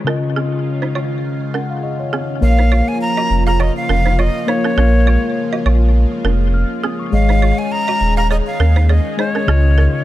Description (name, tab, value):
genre	afrobeats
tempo	102 BPM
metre	4/4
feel	swing 55% on 16ths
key	unclear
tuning	A4 = 439 Hz
part	mellow tine electric piano	accompaniment	0.0-10.0 s	Db3 to F6	-20 LUFS	left 4 dB	low-pass filter
part	lush unison pad	sustained chords	0.0-10.0 s	Db3 to Ab4	-25 LUFS	right 2 dB	chorus, phaser, low-pass filter
part	balafon	riff	0.0-9.9 s	C4 to F5	-24 LUFS	right 6 dB	low-pass filter, ping-pong delay
part	breathy bright jazz flute	melody	2.4-10.0 s	Db5 to Bb5	-20 LUFS	right 1 dB	low-pass filter, ping-pong delay
part	warm sub bass	bass	2.4-9.9 s	Eb1 to Eb2	-13 LUFS	equal	none
room	studio reverb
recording	dark, warm production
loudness	-13 LUFS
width	side -14 dB against mid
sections	0.0-2.4 A section; 2.4-10.0 B section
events	tine electric piano fill 1.2-2.4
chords	0.1 Dbadd9; 2.4 Bbm; 7.1 Absus4; 9.5 Dbadd9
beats	| 0.07 0.66 1.25 1.83 | 2.42 3.01 3.60 4.19 | 4.78 5.36 5.95 6.54 | 7.13 7.72 8.30 8.89 | 9.48